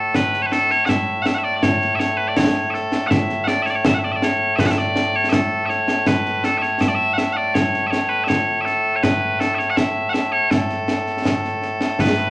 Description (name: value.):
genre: scottish traditional, Scottish pipe music.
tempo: 81 BPM.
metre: 2/4.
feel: straight.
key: A major.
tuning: A4 = 439 Hz.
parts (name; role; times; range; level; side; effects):
loud bright bagpipes; melody; 0.0-12.3 s; A2 to F#5; -21 LUFS; equal; none.
concert snare drum and concert bass drum; drums; 0.1-12.3 s; none; -24 LUFS; equal; none.
room: moderate studio reverb, RT60 0.9 s.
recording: none.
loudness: -19 LUFS.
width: mono.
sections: 0.1-12.0 A section.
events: none.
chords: none.